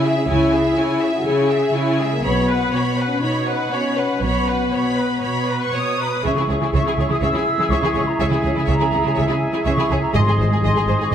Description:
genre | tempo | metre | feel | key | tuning
cinematic | 123 BPM | 4/4 | straight | C# dorian | A4 = 440 Hz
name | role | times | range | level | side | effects
rich studio violin section | melody | 0.0-11.1 s | G#4 to D#6 | -28 LUFS | left 2 dB | none
clear symphonic violin section | second line | 0.0-11.1 s | E4 to E5 | -29 LUFS | left 2 dB | none
rich symphonic viola section | accompaniment | 0.0-11.1 s | E4 to C#5 | -26 LUFS | right 2 dB | none
dark French horn section | sustained chords | 0.0-11.1 s | G#3 to G#4 | -22 LUFS | left 3 dB | none
rich symphonic cello section | bass | 0.0-11.1 s | G#2 to C#3 | -24 LUFS | right 3 dB | none
rich symphonic double bass section | bass | 0.3-11.1 s | G#1 to C#2 | -23 LUFS | right 2 dB | none
hollow flute section | second line | 6.0-11.1 s | G#5 to E6 | -24 LUFS | left 1 dB | none
bright clarinet | second line | 6.2-11.1 s | G#4 | -28 LUFS | left 2 dB | none
clear oboe | second line | 6.2-11.1 s | D#5 to E5 | -28 LUFS | right 3 dB | none
timpani | percussion | 10.1-10.8 s | G#2 | -20 LUFS | left 1 dB | none
room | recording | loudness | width
wet recital hall reverb, RT60 1.7 s | none | -16 LUFS | side -9 dB against mid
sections
0.0-6.2 A section; 6.2-11.1 A section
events
none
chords
0.0 C#m; 2.2 Bsus2; 6.2 C#m; 10.2 G#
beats
| 0.29 0.78 1.26 1.75 | 2.24 2.73 3.21 3.71 | 4.22 4.73 5.23 5.74 | 6.24 6.74 7.23 7.72 | 8.21 8.70 9.18 9.67 | 10.15 10.64 11.13

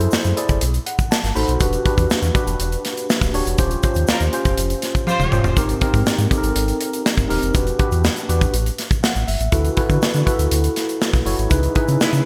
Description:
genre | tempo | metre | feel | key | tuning
polished 1980s jazz-funk pop | 121 BPM | 4/4 | straight | unclear | A4 = 440 Hz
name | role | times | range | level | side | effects
mellow tine electric piano | accompaniment | 0.0-12.3 s | B#3 to B5 | -25 LUFS | equal | subtle chorus
sub bass with octave | bass | 0.0-12.2 s | D1 to D3 | -23 LUFS | equal | none
modern studio drum kit | drums | 0.0-12.2 s | hi-hat, kick drum, snare drum, toms | -22 LUFS | equal | gated reverb
egg shaker | percussion | 0.1-12.2 s | none | -38 LUFS | equal | none
mellow horn section | second line | 4.1-5.4, 12.0-12.1 s | G3 to B#4 | -28 LUFS | equal | delay
room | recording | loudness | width
moderate lush hall reverb, RT60 1.6 s, small room ambience | bright 1980s-style digital production | -19 LUFS | mono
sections
0.0-12.3 A section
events
tine electric piano fill 0.6-1.6; band accent 3.6-5.6, 11.5-12.3; drum fill 5.1-5.6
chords
0.0 F#m7b5; 0.6 B7b9; 1.6 Em9; 3.6 D#13; 5.6 G#maj9; 7.5 Em7; 8.5 F#m7; 9.5 D69; 11.5 C#m9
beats
0.12 0.61 1.11 | 1.61 2.10 2.60 3.09 | 3.59 4.08 4.58 5.07 | 5.57 6.06 6.56 7.05 | 7.55 8.04 8.54 9.03 | 9.53 10.02 10.52 11.01 | 11.51 12.01

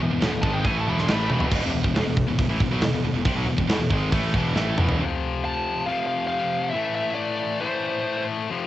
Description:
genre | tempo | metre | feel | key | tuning
heavy metal | 138 BPM | 4/4 | straight | unclear | A4 = 440 Hz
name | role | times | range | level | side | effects
heavy high-gain guitar | riff | 0.0-8.7 s | E2 to A3 | -27 LUFS | left 6 dB | distortion, cassette tape
scooped high-gain guitar | riff | 0.0-5.0 s | E2 to A3 | -28 LUFS | right 7 dB | distortion, cassette tape
fuzz fingered electric bass | bass | 0.0-5.0 s | E1 to C2 | -27 LUFS | right 1 dB | overdrive
tight metal drum kit | drums | 0.2-5.0 s | crash cymbal, hi-hat, kick drum, snare drum, toms | -25 LUFS | right 1 dB | cassette tape
high-gain lead guitar | melody | 0.4-1.4, 5.5-8.2 s | C5 to C6 | -28 LUFS | right 1 dB | distortion, cassette tape, tape echo
room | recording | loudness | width
little or no reverb | home recording on cassette, nothing above 8.0 kHz | -21 LUFS | side -14 dB against mid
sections
0.0-1.5 A section; 1.5-5.0 B section; 5.0-8.7 C section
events
lead electric guitar solo 0.0-1.5; drum fill 1.3, 4.6-5.0; half time 5.0-8.7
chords
0.0 E; 5.0 F; 6.7 Am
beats
0.21 0.65 1.08 | 1.52 1.95 2.39 2.82 | 3.26 3.70 4.13 4.57 | 5.00 5.44 5.88 6.31 | 6.75 7.18 7.62 8.05 | 8.49

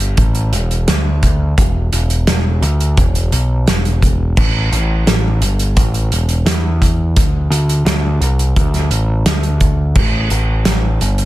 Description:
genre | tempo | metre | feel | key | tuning
quiet-loud alternative rock | 86 BPM | 4/4 | straight | A minor | A4 = 436 Hz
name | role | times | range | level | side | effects
growling picked electric bass | bass | 0.0-11.3 s | E1 to E2 | -15 LUFS | equal | overdrive
loose indie drum kit | drums | 0.0-11.3 s | crash cymbal, hi-hat, kick drum, snare drum | -16 LUFS | equal | none
room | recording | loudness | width
little or no reverb | dense, heavily limited modern master | -12 LUFS | side -16 dB against mid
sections
0.0-11.3 A section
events
none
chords
none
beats
0.18 0.88 | 1.58 2.28 2.98 3.67 | 4.37 5.07 5.77 6.47 | 7.17 7.86 8.56 9.26 | 9.96 10.65

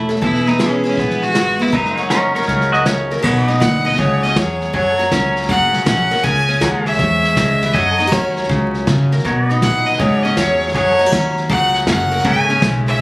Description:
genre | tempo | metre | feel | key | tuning
honky-tonk and classic country | 160 BPM | 4/4 | swing 65% on 8ths | unclear | A4 = 440 Hz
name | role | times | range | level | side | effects
pedal steel guitar | second line | 0.0-3.2 s | F#4 to D#5 | -18 LUFS | right 1 dB | none
picked steel-string acoustic guitar | accompaniment | 0.0-13.0 s | G#2 to A#4 | -19 LUFS | equal | none
pedal steel guitar | sustained chords | 0.0-13.0 s | G#4 to F#5 | -23 LUFS | equal | none
upright bass | bass | 0.0-13.0 s | E1 to C#3 | -20 LUFS | equal | none
vintage brush drum kit | drums | 0.1-13.0 s | crash cymbal, hi-hat, kick drum, snare drum | -22 LUFS | equal | none
clear fiddle | melody | 0.2-13.0 s | B3 to G#5 | -17 LUFS | equal | none
room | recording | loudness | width
light reverb | recorded on a phone in the room, studio ambience, vinyl crackle, compression | -13 LUFS | side -23 dB against mid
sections
0.0-3.2 A section; 3.2-13.0 B section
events
none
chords
0.2 E; 1.7 F#6; 3.2 B; 4.0 C#sus4; 4.7 F#; 6.2 C#m; 7.7 F#; 9.2 B; 10.0 C#sus4; 10.8 F#; 12.3 C#m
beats
| 0.22 0.60 0.98 1.35 | 1.73 2.11 2.48 2.86 | 3.24 3.61 3.99 4.37 | 4.74 5.12 5.49 5.87 | 6.24 6.62 7.00 7.37 | 7.75 8.12 8.50 8.87 | 9.25 9.62 10.00 10.38 | 10.75 11.13 11.50 11.88 | 12.25 12.63 13.00

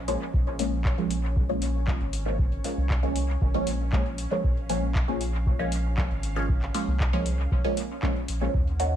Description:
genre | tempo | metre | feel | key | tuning
dub techno | 117 BPM | 4/4 | straight | Bb minor | A4 = 440 Hz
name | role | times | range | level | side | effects
soft dub sub bass | bass | 0.0-9.0 s | Ab1 to Eb2 | -28 LUFS | equal | tube saturation, sidechain pumping
bubbling stepped-filter texture | texture | 0.0-9.0 s | Db4 to Gb5 | -40 LUFS | equal | chorus, built-in reverb, sidechain pumping
filtered dub chord stab | stabs | 0.1-8.9 s | F3 to Gb4 | -29 LUFS | equal | phaser, dub echo
booming analog drum machine | drums | 0.1-8.9 s | handclaps, hi-hat | -37 LUFS | left 1 dB | studio reverb, dub echo
electronic kick drum | drums | 0.3-8.6 s | none | -27 LUFS | equal | studio reverb
room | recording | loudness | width
little or no reverb | echo-heavy mix | -24 LUFS | side -10 dB against mid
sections
0.0-9.0 A section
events
none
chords
0.0 Bbm7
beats
| 0.34 0.85 1.36 1.87 | 2.39 2.90 3.41 3.92 | 4.44 4.95 5.46 5.98 | 6.49 7.00 7.51 8.03 | 8.54

